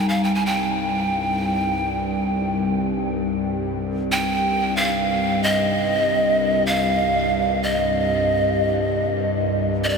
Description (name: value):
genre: world meditative, free-time meditation music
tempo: free time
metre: none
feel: none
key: unclear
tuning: A4 = 440 Hz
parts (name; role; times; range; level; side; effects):
- breathy mellow pan flute; melody; 0.0-10.0 s; D5 to Ab5; -21 LUFS; right 1 dB; diffuse ambient delay
- bowed-like drone; drone; 0.0-10.0 s; C2 to G2; -24 LUFS; left 1 dB; built-in reverb
- quartz singing bowl; texture; 0.0-7.9 s; G3 to Eb4; -28 LUFS; left 1 dB; none
room: wet huge ambient reverb, RT60 7.9 s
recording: dreamy mix soaked in reverb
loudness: -19 LUFS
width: side -5 dB against mid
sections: 0.0-10.0 A section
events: none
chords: none